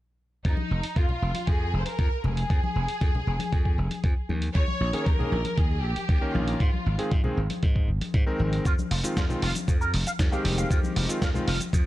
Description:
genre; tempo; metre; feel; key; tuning
nu-disco, nu disco; 117 BPM; 4/4; straight; F minor; A4 = 440 Hz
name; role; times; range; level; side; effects
dusty soul sampler-style drum kit; drums; 0.4-11.8 s; hi-hat, shaker, snare drum; -34 LUFS; right 1 dB; none
rich studio violin section; melody; 0.5-7.4 s; Eb4 to Db5; -33 LUFS; equal; analog delay
slap bass; bass; 0.5-11.9 s; F1 to Ab2; -27 LUFS; equal; none
electronic kick drum; drums; 0.5-11.8 s; none; -24 LUFS; equal; none
congas; percussion; 0.6-11.7 s; none; -36 LUFS; left 4 dB; none
clear electric grand piano; accompaniment; 4.9-11.5 s; Eb3 to Bb4; -31 LUFS; equal; sidechain pumping, tape echo
electric guitar with an envelope filter; riff; 8.7-11.8 s; F3 to F5; -34 LUFS; right 1 dB; analog chorus, tape echo
room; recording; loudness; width
little or no reverb; none; -23 LUFS; side -16 dB against mid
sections
0.5-11.9 A section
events
none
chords
0.5 Fm; 4.3 Eb7(no3); 6.6 Ab; 8.7 Fm7

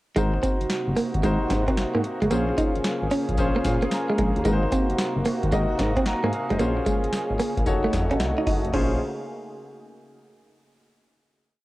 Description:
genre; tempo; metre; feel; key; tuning
R&B, new jack swing; 112 BPM; 4/4; swing 66% on 16ths; Bb minor; A4 = 442 Hz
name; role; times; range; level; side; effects
clear concert grand piano; accompaniment; 0.2-9.0 s; Db4 to Bb5; -28 LUFS; left 2 dB; cassette tape
sweeping resonant pad; sustained chords; 0.2-9.0 s; C3 to Ab4; -30 LUFS; right 1 dB; chorus, cassette tape
direct-recorded clean electric guitar; riff; 0.2-8.9 s; Ab3 to Eb4; -26 LUFS; right 2 dB; lush chorus, cassette tape
smooth gliding synth bass; bass; 0.2-9.0 s; F1 to Bb2; -27 LUFS; equal; none
booming analog drum machine; drums; 0.2-9.0 s; crash cymbal, hi-hat, kick drum, snare drum, tambourine; -27 LUFS; equal; overdrive, cassette tape
room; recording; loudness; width
light reverb, digital ambience; home recording on cassette; -21 LUFS; side -18 dB against mid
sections
0.2-8.7 chorus; 8.7-10.9 final chord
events
grand piano fill 3.4-4.5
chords
0.2 Ab9; 2.3 Bbm7; 4.5 Ab9; 6.6 Bbm7; 7.7 F7b9b13; 8.7 Bbm7

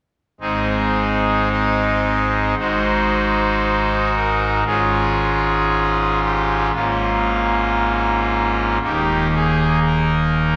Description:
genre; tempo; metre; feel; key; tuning
classical, chorale-style piece for pipe organ; 58 BPM; 4/4; rubato; Ab major; A4 = 440 Hz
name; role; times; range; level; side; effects
pipe organ, trumpet; solo; 0.4-10.6 s; Eb1 to Eb5; -18 LUFS; equal; none
room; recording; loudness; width
wet church reverb, RT60 3.0 s; none; -18 LUFS; mono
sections
0.4-10.6 A section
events
none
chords
0.4 Ab; 2.6 Ab7; 4.7 Db/Ab; 6.8 Bbm/Ab; 8.8 Eb5

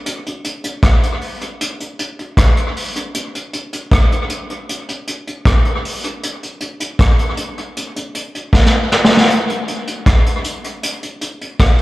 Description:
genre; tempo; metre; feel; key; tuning
reggae; 78 BPM; 4/4; straight; none; none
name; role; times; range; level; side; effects
vintage brush drum kit; drums; 0.1-11.8 s; hi-hat, kick drum, rim click, snare drum; -15 LUFS; equal; tape echo
room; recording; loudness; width
moderate plate reverb, RT60 2.4 s; live gig heard through the venue's PA, club ambience; -15 LUFS; side -18 dB against mid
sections
0.0-9.3 A section; 9.3-11.8 B section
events
drum fill 8.5-9.3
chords
none

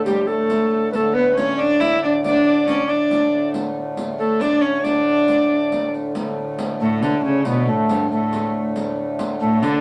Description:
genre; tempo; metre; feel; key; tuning
medieval dance; 92 BPM (dotted quarters); 6/8; straight; unclear; A4 = 440 Hz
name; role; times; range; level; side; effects
warm viola da gamba; melody; 0.0-9.8 s; G2 to E4; -22 LUFS; equal; none
bass recorder; second line; 0.0-9.8 s; A3 to D5; -22 LUFS; equal; none
hand-pumped harmonium; drone; 0.0-9.8 s; D2 to A2; -29 LUFS; equal; none
riq; percussion; 0.1-9.8 s; none; -33 LUFS; equal; none
room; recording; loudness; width
wet studio reverb, RT60 0.5 s; none; -19 LUFS; mono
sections
0.0-6.1 A section; 6.1-9.8 A section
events
none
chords
none

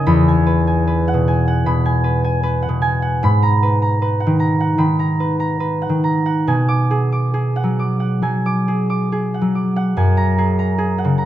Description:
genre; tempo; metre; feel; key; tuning
classical, solo harp piece; 68-77 BPM; 4/4; rubato; unclear; A4 = 445 Hz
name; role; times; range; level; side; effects
concert harp; solo; 0.0-11.3 s; E2 to D6; -15 LUFS; equal; none
room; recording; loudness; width
moderate recital hall reverb, RT60 1.5 s; close, detailed microphones; -15 LUFS; side -12 dB against mid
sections
0.0-11.3 A section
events
none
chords
0.1 Eadd9; 3.2 G#m9; 6.5 Bm6; 10.0 F#add9

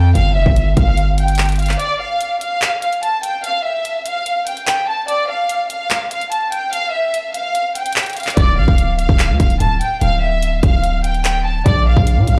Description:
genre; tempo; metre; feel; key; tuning
hip hop, drill; 146 BPM; 4/4; half-time; D minor; A4 = 440 Hz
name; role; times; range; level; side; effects
warm symphonic violin section; melody; 0.0-12.4 s; D5 to A5; -21 LUFS; equal; delay
distorted 808-style bass; bass; 0.0-1.8, 8.4-12.4 s; D1 to Bb2; -17 LUFS; equal; distortion
drill drum kit; drums; 0.2-12.4 s; handclaps, hi-hat, kick drum; -19 LUFS; equal; none
room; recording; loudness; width
little or no reverb; played on a big sound system in a bare room, large studio reverb; -17 LUFS; mono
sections
0.0-12.4 A section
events
break 1.8-8.4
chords
0.2 Fsus2; 1.8 N.C.; 8.4 Dm; 11.7 Bb5

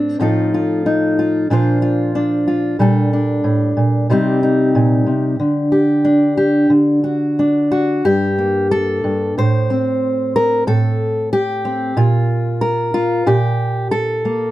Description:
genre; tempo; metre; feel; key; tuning
folk, solo fingerstyle acoustic guitar; 92 BPM; 4/4; rubato; G minor; A4 = 440 Hz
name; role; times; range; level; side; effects
fingerpicked steel-string acoustic guitar; solo; 0.0-14.5 s; G2 to C5; -14 LUFS; equal; none
room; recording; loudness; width
light reverb; dark, warm production; -14 LUFS; side -15 dB against mid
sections
0.0-8.1 A section; 8.1-14.5 B section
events
none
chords
0.2 F7/A; 1.5 Bbadd9; 2.8 Gmadd9/Bb; 4.1 Cm; 5.4 Dsus4; 6.7 D; 8.1 Gmadd9; 9.4 Am; 12.0 N.C.

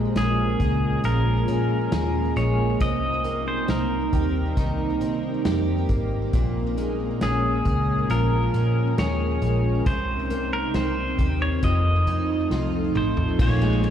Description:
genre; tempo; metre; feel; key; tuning
dream pop; 68 BPM; 4/4; straight; Bb dorian; A4 = 440 Hz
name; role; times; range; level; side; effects
ethereal airy pad; sustained chords; 0.0-13.9 s; F3 to G5; -27 LUFS; right 3 dB; ensemble chorus, built-in reverb
picked twelve-string acoustic guitar; arpeggios; 0.0-13.9 s; F2 to Ab4; -28 LUFS; left 2 dB; analog chorus, digital delay
vintage muted fingered electric bass; bass; 0.0-13.9 s; F1 to C3; -25 LUFS; equal; none
pedal steel guitar; melody; 0.2-13.9 s; Ab4 to Eb5; -28 LUFS; equal; digital delay
vintage drum kit; drums; 0.2-13.9 s; crash cymbal, hi-hat, kick drum, ride cymbal, snare drum, toms; -26 LUFS; equal; none
room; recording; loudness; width
light reverb, small room ambience; played on a big sound system in a bare room, large studio reverb; -20 LUFS; side -9 dB against mid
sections
0.0-13.4 A section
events
drum fill 12.5-13.4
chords
0.0 Bbm7; 2.8 Cm7; 6.3 Bbm7; 9.9 Cm7; 11.6 F7; 13.4 Bbm7

